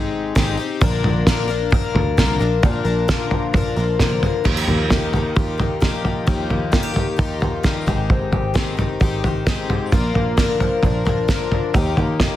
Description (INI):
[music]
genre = indie folk with a building arrangement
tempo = 132 BPM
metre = 4/4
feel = straight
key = Eb major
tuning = A4 = 440 Hz
[part]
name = picked plugged-in twelve-string acoustic guitar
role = accompaniment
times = 0.0-12.4 s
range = Bb2 to Bb4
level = -23 LUFS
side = left 5 dB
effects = none
[part]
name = picked electric bass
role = bass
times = 0.0-12.4 s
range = Ab1 to Eb2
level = -24 LUFS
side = right 1 dB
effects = none
[part]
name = cloth-damped thuddy drum kit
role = drums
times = 0.4-12.3 s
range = crash cymbal, kick drum, snare drum, toms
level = -19 LUFS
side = equal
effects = none
[part]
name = fingerpicked acoustic archtop guitar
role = accompaniment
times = 2.6-12.4 s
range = Eb2 to G4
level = -26 LUFS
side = left 1 dB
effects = none
[sound]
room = light reverb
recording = dense, heavily limited modern master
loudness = -16 LUFS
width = side -13 dB against mid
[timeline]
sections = 0.0-2.6 A section; 2.6-4.5 B section; 4.5-12.4 C section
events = none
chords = 0.0 Abmaj7; 0.8 Bb; 4.5 Ebadd9; 7.9 Abmaj7; 9.9 Bb; 11.7 Ebadd9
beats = 0.35 | 0.81 1.26 1.72 2.17 | 2.63 3.08 3.54 4.00 | 4.45 4.91 5.36 5.82 | 6.28 6.73 7.19 7.64 | 8.10 8.55 9.01 9.47 | 9.92 10.38 10.84 11.29 | 11.75 12.20